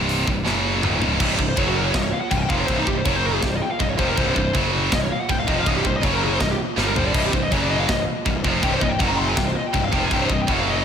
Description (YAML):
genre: heavy metal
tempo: 162 BPM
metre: 4/4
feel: straight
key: C phrygian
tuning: A4 = 440 Hz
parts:
  - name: heavy high-gain guitar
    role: riff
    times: 0.0-10.8 s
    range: C2 to G3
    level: -26 LUFS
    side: left 10 dB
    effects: distortion, slapback echo
  - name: heavy high-gain guitar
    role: riff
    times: 0.0-10.8 s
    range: C2 to G3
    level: -25 LUFS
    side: right 10 dB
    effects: distortion
  - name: fuzz picked electric bass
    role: bass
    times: 0.0-10.8 s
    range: C1 to G1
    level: -25 LUFS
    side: equal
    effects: overdrive
  - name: tight metal drum kit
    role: drums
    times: 0.1-10.6 s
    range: crash cymbal, hi-hat, kick drum, snare drum, splash cymbal, toms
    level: -24 LUFS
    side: equal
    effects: none
  - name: high-gain lead guitar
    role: melody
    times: 1.5-10.8 s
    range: Eb4 to C6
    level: -25 LUFS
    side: left 1 dB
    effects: distortion, slapback echo
room: moderate lush hall reverb, RT60 2.0 s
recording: big arena sound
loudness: -18 LUFS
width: side -8 dB against mid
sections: 0.0-1.2 A section; 1.2-10.8 B section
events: drum fill 0.5-1.2, 6.8-7.1; lead electric guitar solo 1.2-10.8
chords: 0.5 F#5; 0.8 Db5; 1.2 C5; 1.6 F#5; 2.0 C5; 3.1 F#5; 3.4 C5; 4.5 F#5; 4.9 C5; 6.0 F#5; 6.4 C5; 6.8 G5; 7.1 C5; 7.5 F#5; 7.9 C5; 9.0 F#5; 9.4 C5; 10.5 F#5